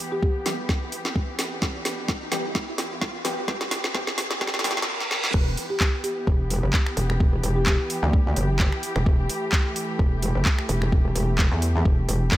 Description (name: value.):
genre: bass house.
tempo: 129 BPM.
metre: 4/4.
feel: swing 55% on 16ths.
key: E minor.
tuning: A4 = 441 Hz.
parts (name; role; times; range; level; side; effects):
muted studio string section; sustained chords; 0.0-12.4 s; E3 to G4; -32 LUFS; equal; sidechain pumping.
orchestra-hit-like synth stab; stabs; 0.0-4.7 s; E3 to G4; -34 LUFS; left 1 dB; built-in reverb, sidechain pumping, dub echo.
riser and reverse cymbal; sound effects; 1.5-5.3 s; none; -34 LUFS; right 2 dB; none.
buzzing marimba with soft mallets; melody; 0.1-0.3, 5.7-7.7 s; G4; -32 LUFS; left 1 dB; vintage 12-bit sampler grit, dub echo.
electronic kick drum; drums; 0.2-12.4 s; none; -22 LUFS; equal; overdrive.
garage drum kit; drums; 0.5-12.4 s; crash cymbal, finger snaps, handclaps, hi-hat, snare drum; -27 LUFS; equal; overdrive.
metallic wobble bass; bass; 5.3-12.4 s; E1 to E2; -23 LUFS; equal; chorus, sidechain pumping.
room: light reverb.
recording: high-pass filter.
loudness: -21 LUFS.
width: side -15 dB against mid.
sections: 0.0-5.3 A section; 5.3-12.4 B section.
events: build-up 0.0-5.3; drum fill 0.0-4.9, 5.0-5.3; filter sweep on synth stab 0.0-5.3; filter sweep 0.0-5.3; riser 1.5-5.3; reverse cymbal 4.4-5.3; drop 5.3-12.4.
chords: 0.0 Em.